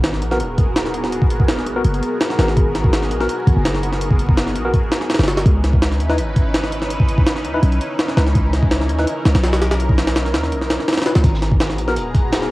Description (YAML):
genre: drum and bass, jungle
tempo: 166 BPM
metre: 4/4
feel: straight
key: G# minor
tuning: A4 = 440 Hz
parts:
  - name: lush unison pad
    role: sustained chords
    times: 0.0-12.5 s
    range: B3 to A#5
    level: -24 LUFS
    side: equal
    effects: chorus, phaser
  - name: warm 808-style bass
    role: bass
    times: 0.0-12.5 s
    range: D#1 to D#2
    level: -19 LUFS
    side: equal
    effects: none
  - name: jungle sampler-style drum kit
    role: drums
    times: 0.0-12.5 s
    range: hi-hat, kick drum, snare drum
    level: -17 LUFS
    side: equal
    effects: cassette tape
  - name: tine electric piano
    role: stabs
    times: 0.3-11.9 s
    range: B3 to B4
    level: -25 LUFS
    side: left 1 dB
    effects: fast stereo tremolo, dub echo
  - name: crunchy breakbeat drum kit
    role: drums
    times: 11.2-12.4 s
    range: hi-hat, snare drum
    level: -32 LUFS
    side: right 1 dB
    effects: high-pass filter on hats, cassette tape, high-pass filter on snare, high-pass filter on room
room: light reverb, digital ambience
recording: home recording on cassette, vinyl crackle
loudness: -15 LUFS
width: side -19 dB against mid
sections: 0.0-12.5 A section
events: none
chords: 0.0 G#m9; 5.5 C#m9; 11.2 G#m9